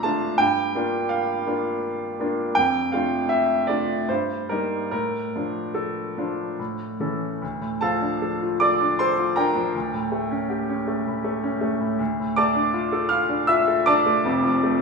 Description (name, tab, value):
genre	classical, romantic character piece for solo piano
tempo	70-84 BPM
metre	3/4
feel	rubato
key	D minor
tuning	A4 = 441 Hz
part	clear grand piano	solo	0.0-14.8 s	F1 to F6	-21 LUFS	equal	none
room	wet recital hall reverb, RT60 1.5 s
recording	recorded in a church or concert hall, studio ambience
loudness	-21 LUFS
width	side -4 dB against mid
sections	0.0-7.4 A section; 7.4-14.8 B section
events	none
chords	0.4 Gm7; 2.6 Dm/F; 4.1 Eb/G; 4.9 Dm/A; 6.6 A; 7.4 Dm; 9.7 A7b9/D; 12.0 Dm; 14.3 Dm/F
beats	| 0.39 1.11 1.83 | 2.57 3.30 4.09 | 4.92 5.76 6.59 | 7.42 8.21 8.99 | 9.74 10.51 11.25 | 12.00 12.74 13.48 | 14.26